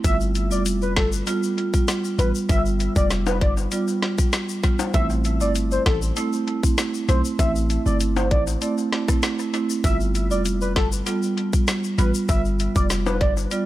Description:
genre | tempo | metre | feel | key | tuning
dancehall | 98 BPM | 4/4 | straight | unclear | A4 = 441 Hz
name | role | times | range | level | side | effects
warm velvety synth lead | melody | 0.0-13.3 s | A4 to E5 | -27 LUFS | equal | chorus, tape echo
marimba with medium mallets | accompaniment | 0.0-13.7 s | G3 to F4 | -24 LUFS | right 3 dB | tape echo
hard-hitting 808-style bass | bass | 0.0-13.5 s | F1 to B1 | -23 LUFS | equal | none
island pop drum kit | drums | 0.0-13.7 s | hi-hat, kick drum, rim click, snare drum | -23 LUFS | equal | tape echo
tube shaker and timbales | percussion | 0.0-13.7 s | none | -32 LUFS | left 7 dB | tape echo
room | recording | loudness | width
little or no reverb | echo-heavy mix | -19 LUFS | side -15 dB against mid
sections
0.0-13.7 A section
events
none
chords
0.0 G7; 4.9 Am; 9.8 G7

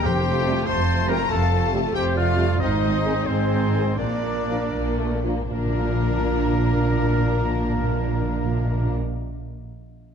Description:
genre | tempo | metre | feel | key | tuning
cinematic, heroic adventure film score | 75-95 BPM (dotted quarters) | 12/8 | straight | Bb major | A4 = 442 Hz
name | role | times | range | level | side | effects
warm chamber violin section | melody | 0.0-8.9 s | Bb4 to C6 | -31 LUFS | left 6 dB | none
bright concert flute | second line | 0.0-9.0 s | Ab4 to Bb5 | -32 LUFS | left 4 dB | none
clear oboe | second line | 0.0-9.0 s | Bb4 to C6 | -34 LUFS | equal | none
warm symphonic violin section | second line | 0.0-8.9 s | A3 to F4 | -32 LUFS | left 6 dB | none
rich studio viola section | accompaniment | 0.0-8.9 s | C4 to C5 | -30 LUFS | right 3 dB | none
clear trumpet | stabs | 0.0-8.9 s | C4 to C5 | -31 LUFS | equal | none
rich symphonic double bass section | bass | 0.1-8.9 s | F1 to Bb1 | -26 LUFS | right 2 dB | none
warm symphonic cello section | bass | 0.1-8.9 s | F2 to Bb2 | -27 LUFS | right 2 dB | none
timpani | percussion | 0.1-0.6, 5.5-9.0 s | F2 to Bb2 | -28 LUFS | left 1 dB | none
dark French horn section | sustained chords | 0.5-8.9 s | A3 to Ab4 | -32 LUFS | left 3 dB | none
warm trombone section | sustained chords | 0.5-8.9 s | C3 to Bb3 | -32 LUFS | right 3 dB | none
room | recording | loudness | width
moderate recital hall reverb, RT60 1.7 s | dark, warm production | -20 LUFS | side -7 dB against mid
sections
0.0-5.5 A section; 5.5-8.7 B section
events
slowing down 0.9-5.5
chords
0.0 Fadd9; 2.6 Ab; 4.0 Bb

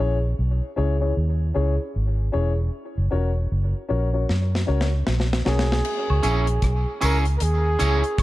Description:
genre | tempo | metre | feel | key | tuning
dub reggae | 77 BPM | 4/4 | swing 62% on 16ths | C# dorian | A4 = 443 Hz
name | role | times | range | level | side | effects
dark upright piano | stabs | 0.0-5.6 s | C#4 to C#5 | -28 LUFS | left 4 dB | tape echo
vintage muted fingered electric bass | bass | 0.0-8.2 s | E1 to F#2 | -21 LUFS | equal | none
deep reggae drum kit | drums | 4.3-8.2 s | crash cymbal, hi-hat, kick drum, rim click, snare drum | -26 LUFS | equal | none
breathy flugelhorn | melody | 5.5-8.2 s | G#4 to A#4 | -26 LUFS | right 1 dB | tape echo
woodblock and tambourine | percussion | 6.1-8.2 s | none | -36 LUFS | right 1 dB | tape echo
electric guitar at the edge of break-up | accompaniment | 6.2-8.0 s | C#4 to C#5 | -26 LUFS | right 2 dB | wide subtle chorus, tape echo
room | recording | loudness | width
light reverb, small room ambience | dark, warm production | -20 LUFS | side -17 dB against mid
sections
0.0-5.8 A section; 5.8-8.2 B section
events
break 0.0-5.8; drum fill 4.3-5.8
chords
0.0 C#m; 2.7 F#; 5.8 C#m

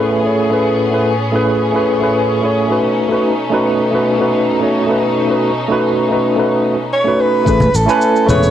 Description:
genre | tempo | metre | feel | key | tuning
sunset chillout | 110 BPM | 4/4 | straight | A lydian | A4 = 444 Hz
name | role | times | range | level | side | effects
tine electric piano | accompaniment | 0.0-8.5 s | A3 to G#5 | -14 LUFS | equal | medium stereo tremolo, auto-pan, tape echo
rich studio string section | sustained chords | 0.0-7.4 s | A2 to G#4 | -20 LUFS | left 1 dB | none
warm soprano saxophone | melody | 6.9-8.5 s | A4 to C#5 | -14 LUFS | right 1 dB | cassette tape
sustaining fretless electric bass | bass | 7.5-8.5 s | E1 to A1 | -15 LUFS | equal | none
electronic kick drum | drums | 7.5-7.6 s | none | -18 LUFS | equal | overdrive, cassette tape
electronic shaker and toms | drums | 7.5-8.5 s | none | -24 LUFS | equal | cassette tape
congas | percussion | 7.6-8.4 s | none | -18 LUFS | left 2 dB | none
room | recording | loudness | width
wet studio reverb, RT60 0.5 s | home recording on cassette | -12 LUFS | side -10 dB against mid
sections
0.0-7.5 A section; 7.5-8.5 B section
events
none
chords
0.0 Amaj9; 2.8 B9; 7.5 Amaj9

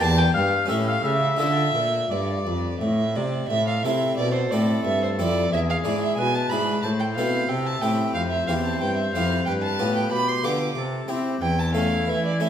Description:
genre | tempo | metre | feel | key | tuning
classical, baroque-style sonata movement with continuo | 91 BPM | 3/4 | rubato | D minor, A minor from 3.5 s | A4 = 441 Hz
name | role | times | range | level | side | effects
warm oboe | melody | 0.0-12.5 s | E4 to A5 | -29 LUFS | left 5 dB | none
warm violin | second line | 0.0-12.5 s | C5 to D6 | -26 LUFS | right 3 dB | none
harpsichord | accompaniment | 0.0-12.5 s | E2 to Bb4 | -25 LUFS | left 2 dB | none
warm cello | bass | 0.0-12.5 s | E2 to C4 | -26 LUFS | right 1 dB | none
room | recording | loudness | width
wet stone room reverb, RT60 1.2 s | none | -21 LUFS | side -9 dB against mid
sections
0.0-3.5 A section; 3.5-12.5 A section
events
none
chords
0.0 Em7b5; 0.7 A7; 1.4 Dm; 3.5 Am; 5.5 E7; 6.8 Am; 7.5 C; 9.5 G7; 10.8 C; 11.4 A/E

